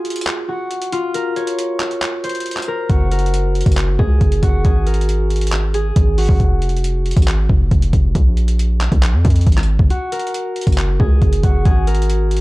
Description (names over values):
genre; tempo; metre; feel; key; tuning
hip hop, trap; 137 BPM; 4/4; half-time; unclear; A4 = 440 Hz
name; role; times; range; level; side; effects
concert harp; melody; 0.0-12.4 s; F4 to Db5; -22 LUFS; equal; low-pass filter
boom bap sampler-style drum kit; drums; 0.1-12.4 s; handclaps, hi-hat, kick drum, rim click; -17 LUFS; equal; none
hard-hitting 808-style bass; bass; 2.9-12.4 s; F1 to F2; -16 LUFS; equal; none
room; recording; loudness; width
digital ambience; dark, warm production; -14 LUFS; side -20 dB against mid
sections
0.0-12.4 A section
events
break 0.0-2.9, 9.9-10.3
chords
0.0 N.C.; 2.9 Gb; 4.6 Absus2; 6.4 Fm; 8.2 Bb5; 9.9 Gb; 11.7 Absus2